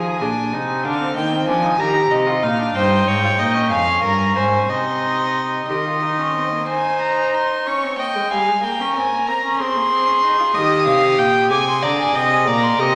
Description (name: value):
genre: classical, baroque-style fugue for string quartet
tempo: 62 BPM (dotted quarters)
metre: 6/8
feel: straight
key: Ab major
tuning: A4 = 439 Hz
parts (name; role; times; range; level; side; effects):
- warm violin; melody; 0.0-12.9 s; Eb5 to Eb6; -23 LUFS; equal; none
- rich viola; accompaniment; 0.0-12.9 s; G3 to Bb4; -24 LUFS; equal; none
- rich cello; bass; 0.0-6.7, 10.5-12.9 s; F2 to F3; -25 LUFS; equal; none
- rich violin; second line; 2.8-12.9 s; Ab4 to Ab5; -23 LUFS; equal; none
room: wet recital hall reverb, RT60 1.5 s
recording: none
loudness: -18 LUFS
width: mono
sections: 0.0-6.7 A section; 6.7-12.9 B section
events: none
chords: 0.0 Fm; 0.8 Bb7/D; 1.8 Eb; 2.8 Eb/G; 3.7 Db/F; 4.7 Cm; 5.7 Eb5; 6.7 Ab/Eb; 7.7 Db; 8.6 Bbm13; 9.6 Ab; 10.6 Eb; 11.5 Ab/C